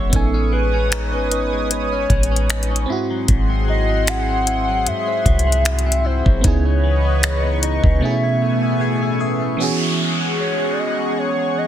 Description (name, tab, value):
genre	contemporary R&B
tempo	76 BPM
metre	4/4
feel	swing 54% on 16ths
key	E major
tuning	A4 = 442 Hz
part	hollow clarinet-like synth lead	melody	0.0-11.7 s	A4 to F#5	-24 LUFS	equal	chorus, digital delay
part	FM electric piano	accompaniment	0.0-11.7 s	B2 to G#5	-24 LUFS	right 4 dB	chorus
part	chorused pulse-width pad	sustained chords	0.0-11.7 s	A3 to D#6	-25 LUFS	equal	sidechain pumping
part	direct-recorded clean electric guitar	arpeggios	0.0-10.2 s	G#2 to G#4	-26 LUFS	left 7 dB	phaser, digital delay
part	soft 808-style bass	bass	0.0-8.0 s	E1 to G#2	-19 LUFS	equal	none
part	smooth R&B drum kit	drums	0.1-8.0 s	finger snaps, hi-hat, kick drum	-19 LUFS	equal	soft clipping on snare
part	downlifter	sound effects	9.6-11.7 s	none	-24 LUFS	right 1 dB	none
room	little or no reverb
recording	dense, heavily limited modern master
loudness	-16 LUFS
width	side -10 dB against mid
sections	0.0-9.6 A section; 9.6-11.7 B section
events	break 8.0-9.6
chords	0.1 Amaj9#11; 2.9 G#7b13; 6.4 C#m9; 8.0 B13sus4; 9.6 E69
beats	| 0.13 0.92 1.71 2.50 | 3.29 4.08 4.87 5.66 | 6.44 7.23 8.02 8.81 | 9.60 10.39 11.18